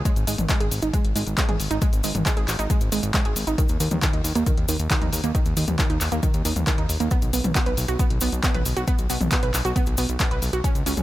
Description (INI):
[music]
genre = uplifting trance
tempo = 136 BPM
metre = 4/4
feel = straight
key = unclear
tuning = A4 = 441 Hz
[part]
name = fat analog bass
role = bass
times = 0.0-11.0 s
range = G#1 to D#2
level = -26 LUFS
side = equal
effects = sidechain pumping
[part]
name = wide unison pluck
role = arpeggios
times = 0.1-10.9 s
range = D#3 to B4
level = -28 LUFS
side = right 4 dB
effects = sidechain pumping, digital delay
[part]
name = electronic kick drum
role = drums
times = 0.1-10.7 s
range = none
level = -23 LUFS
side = equal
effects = none
[part]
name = punchy analog drum machine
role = drums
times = 0.1-11.0 s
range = handclaps, hi-hat, toms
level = -28 LUFS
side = left 1 dB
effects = none
[part]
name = cabasa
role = percussion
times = 0.1-11.0 s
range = none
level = -32 LUFS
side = left 2 dB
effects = none
[sound]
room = little or no reverb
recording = none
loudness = -20 LUFS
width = side -15 dB against mid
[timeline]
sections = 0.0-11.0 A section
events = none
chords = 0.1 G#5; 3.6 D#5; 7.1 B5